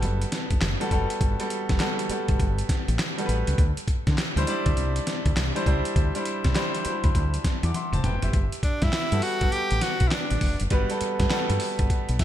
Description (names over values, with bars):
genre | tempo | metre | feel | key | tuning
R&B, new jack swing | 101 BPM | 4/4 | swing 64% on 16ths | G major | A4 = 441 Hz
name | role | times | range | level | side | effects
clear grand piano | accompaniment | 0.0-12.2 s | F#3 to D6 | -29 LUFS | equal | none
woody fretless electric bass | bass | 0.0-12.2 s | E1 to D3 | -26 LUFS | equal | none
dusty soul sampler-style drum kit | drums | 0.0-12.2 s | handclaps, hi-hat, kick drum, snare drum, toms | -25 LUFS | equal | gated reverb
bright tenor saxophone | melody | 8.6-10.6 s | D4 to G4 | -28 LUFS | equal | digital delay
room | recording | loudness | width
light reverb | bright 1980s-style digital production | -22 LUFS | side -12 dB against mid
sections
0.0-8.3 A section; 8.3-12.2 B section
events
drum fill 7.7-8.3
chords
0.0 Gmaj9; 3.6 D9sus4; 8.3 Gmaj9